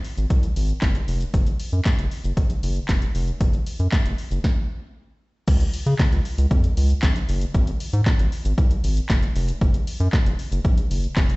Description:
dance-pop; 116 BPM; 4/4; straight; A4 = 440 Hz
punchy analog drum machine; drums; 0.0-11.4 s; crash cymbal, handclaps, hi-hat, kick drum, shaker, snare drum; -21 LUFS; equal; overdrive
round analog bass; bass; 0.2-11.3 s; F1 to Db3; -22 LUFS; equal; sidechain pumping
digital ambience; played on a big sound system in a bare room, stone room reverb, nothing above 8.0 kHz; -19 LUFS; side -24 dB against mid
0.0-5.5 A section; 5.5-11.4 B section
stop 4.4-5.5

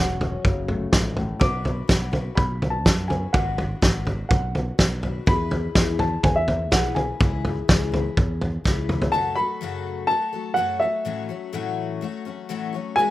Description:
indie folk with a building arrangement; 124 BPM; 4/4; straight; A major; A4 = 439 Hz
dark upright piano; melody; 0.0-13.1 s; E5 to D6; -24 LUFS; equal
fingerpicked old ladder-braced acoustic guitar; accompaniment; 0.0-1.4 s; F#2 to F#4; -29 LUFS; left 3 dB
fingered electric bass; bass; 0.0-9.1 s; E1 to F#2; -28 LUFS; equal
loose indie drum kit; drums; 0.2-9.1 s; kick drum, snare drum, toms; -21 LUFS; equal
picked twelve-string acoustic guitar; accompaniment; 1.4-13.1 s; F#2 to B4; -31 LUFS; left 7 dB
little or no reverb; rough home demo mix; -20 LUFS; side -16 dB against mid
0.0-9.1 A section; 9.1-13.1 B section
drum fill 8.7-9.1
0.0 F#m; 1.4 Bm; 5.3 E; 9.1 F#m; 11.1 A6

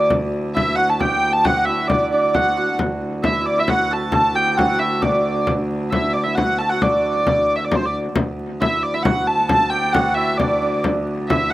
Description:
medieval dance; 134 BPM; 3/4; straight; D major; A4 = 440 Hz
warm hurdy-gurdy; melody; 0.0-11.5 s; C5 to A5; -19 LUFS; equal
hammered dulcimer; second line; 0.0-11.5 s; D4 to A4; -24 LUFS; right 3 dB; slapback echo
rich viola da gamba; drone; 0.0-11.5 s; D2; -26 LUFS; equal
frame drum; percussion; 0.1-11.5 s; -22 LUFS; left 2 dB
little or no reverb; recorded outdoors, with no room sound; -16 LUFS; side -16 dB against mid
0.0-8.2 A section; 8.2-11.5 A section

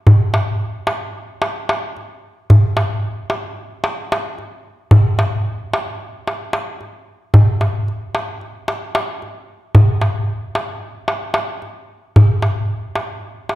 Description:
turkish; free time
darbuka; percussion; 0.1-13.6 s; -14 LUFS; equal
wet recital hall reverb, RT60 1.4 s; dark, warm production; -15 LUFS; side -16 dB against mid
0.0-9.7 A section; 9.7-13.6 A section

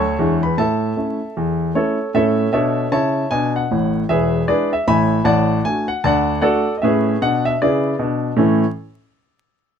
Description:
jazz, stride piano; 154 BPM; 4/4; swing 62% on 8ths; A major; A4 = 439 Hz
clear grand piano; solo; 0.0-8.6 s; E1 to C#6; -16 LUFS; equal
light reverb; close, detailed microphones, vinyl crackle; -16 LUFS; side -7 dB against mid
0.0-2.1 A section; 2.1-8.4 B section; 8.4-9.8 C section
0.2 E7; 0.6 A; 3.7 E7; 5.3 D/A; 6.8 E7/A; 8.4 A

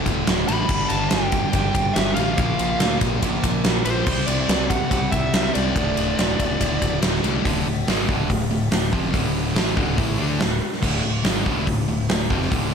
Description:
classic rock; 142 BPM; 4/4; straight; A4 = 440 Hz
crunchy overdriven guitar; riff; 0.0-12.7 s; D2 to D4; -27 LUFS; right 10 dB; slapback echo
sludgy distorted guitar; riff; 0.0-12.7 s; D2 to D4; -26 LUFS; left 8 dB; overdrive
growling picked electric bass; bass; 0.1-12.7 s; D1 to D2; -27 LUFS; equal; overdrive
big rock drum kit; drums; 0.1-12.6 s; crash cymbal, hi-hat, kick drum, ride cymbal, snare drum; -22 LUFS; equal
fuzz lead guitar; melody; 0.5-7.0 s; C5 to B5; -26 LUFS; equal; distortion, slapback echo
moderate lush hall reverb, RT60 2.0 s; big arena sound; -18 LUFS; side -6 dB against mid
0.0-7.4 A section; 7.4-12.7 B section
0.0 D5; 0.7 G5; 2.4 Bb5; 4.1 Cadd9; 5.8 D5

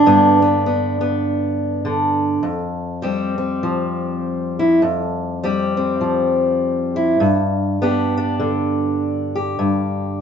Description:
folk, solo fingerstyle acoustic guitar; 101 BPM; 4/4; swing 59% on 8ths; A4 = 441 Hz
fingerpicked steel-string acoustic guitar; solo; 0.0-10.2 s; F2 to G4; -16 LUFS; equal
wet large studio reverb, RT60 0.9 s; band playing live in one room, nothing above 7.8 kHz; -17 LUFS; side -7 dB against mid
0.0-2.4 A section; 2.4-10.2 B section
0.0 G; 2.4 Fsus2; 7.2 G

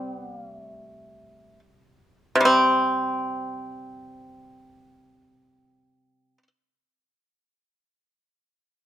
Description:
chinese traditional, Chinese solo plucked strings; free time; A4 = 437 Hz
pipa; solo; 0.0-6.5 s; C3 to C4; -21 LUFS; equal
light reverb; close, detailed microphones; -19 LUFS; side -11 dB against mid
0.0-2.5 A section; 2.5-8.9 B section
slowing down 0.0-2.5

